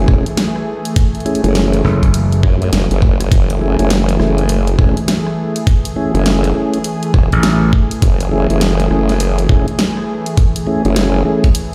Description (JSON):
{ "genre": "glitch hop", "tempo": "102 BPM", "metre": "4/4", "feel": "swing 62% on 16ths", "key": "F# minor", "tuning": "A4 = 440 Hz", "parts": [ { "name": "warm analog pad", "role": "sustained chords", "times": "0.0-11.7 s", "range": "E3 to G#4", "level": "-22 LUFS", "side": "equal", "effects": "chorus, sidechain pumping" }, { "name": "formant-sweep wobble bass", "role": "bass", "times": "0.0-11.2 s", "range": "E1 to F#2", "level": "-17 LUFS", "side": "equal", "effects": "chorus, tube saturation" }, { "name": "mellow tonewheel organ", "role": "stabs", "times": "0.1-11.5 s", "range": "A3 to G#4", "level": "-22 LUFS", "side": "equal", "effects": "slow rotary speaker, vintage 12-bit sampler grit, sidechain pumping, dub echo" }, { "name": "dubstep drum kit", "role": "drums", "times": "0.1-11.7 s", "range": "hi-hat, rim click, snare drum", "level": "-23 LUFS", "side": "equal", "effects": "studio reverb" }, { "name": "electronic kick drum", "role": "drums", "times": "0.1-11.5 s", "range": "none", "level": "-14 LUFS", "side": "equal", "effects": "studio reverb" }, { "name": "gritty slap bass", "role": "bass", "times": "1.8-2.4, 7.3-7.7 s", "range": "F#1 to A1", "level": "-15 LUFS", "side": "equal", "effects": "overdrive" } ], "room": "light reverb", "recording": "played on a big sound system in a bare room, stone room reverb", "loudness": "-14 LUFS", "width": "mono", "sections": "0.0-11.7 A section", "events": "none", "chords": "0.0 F#m9" }